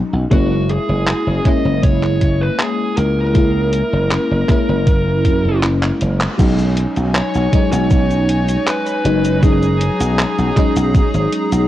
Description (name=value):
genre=vaporwave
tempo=79 BPM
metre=4/4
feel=straight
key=B major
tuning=A4 = 441 Hz
part: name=FM electric piano with soft pad layer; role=accompaniment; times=0.0-11.7 s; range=F#3 to E4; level=-19 LUFS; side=left 1 dB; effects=phaser, wide subtle chorus
part: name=slap bass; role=bass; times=0.1-11.7 s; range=F#1 to F#2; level=-17 LUFS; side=equal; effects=none
part: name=bluesy overdriven lead guitar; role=melody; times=0.3-11.7 s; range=F#4 to D#5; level=-22 LUFS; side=equal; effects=distortion, tape echo
part: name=detuned 8-bit digital drum machine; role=drums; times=0.3-11.7 s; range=cabasa, crash cymbal, handclaps, hi-hat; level=-23 LUFS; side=equal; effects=none
part: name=electronic kick drum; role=drums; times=0.3-11.1 s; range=none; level=-15 LUFS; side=equal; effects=none
part: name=bright chamber string section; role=sustained chords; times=6.4-11.7 s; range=D#4 to A#5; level=-27 LUFS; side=left 1 dB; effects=none
room=little or no reverb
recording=worn, warbling old tape, cassette tape, warbly pitch drift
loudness=-13 LUFS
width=side -13 dB against mid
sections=0.0-6.4 A section; 6.4-11.7 B section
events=drum fill 5.8-6.4; band accent 6.2-6.6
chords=0.3 F#9; 6.4 B69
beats=| 0.32 1.07 1.83 2.59 | 3.35 4.11 4.87 5.63 | 6.39 7.15 7.91 8.67 | 9.43 10.19 10.95